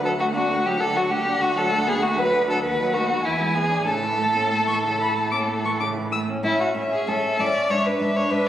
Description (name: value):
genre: quick classical-period movement for string quartet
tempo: 92-100 BPM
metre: 4/4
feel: rubato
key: A major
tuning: A4 = 437 Hz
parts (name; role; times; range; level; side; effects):
- dark violin; melody; 0.0-8.5 s; E5 to E6; -26 LUFS; left 3 dB; none
- rich violin; second line; 0.0-8.5 s; E4 to D5; -22 LUFS; equal; none
- warm viola; accompaniment; 0.0-8.5 s; C#3 to D4; -28 LUFS; equal; none
- rich cello; bass; 0.0-8.4 s; D2 to A2; -28 LUFS; right 2 dB; none
room: wet recital hall reverb, RT60 1.6 s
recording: recorded on a phone in the room, club reverb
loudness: -20 LUFS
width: side -11 dB against mid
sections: 0.0-6.4 A section; 6.4-8.5 B section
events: none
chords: 0.0 D; 1.4 Bm7/D; 2.6 B7/D#; 3.2 E7; 3.9 A; 7.7 E7/G#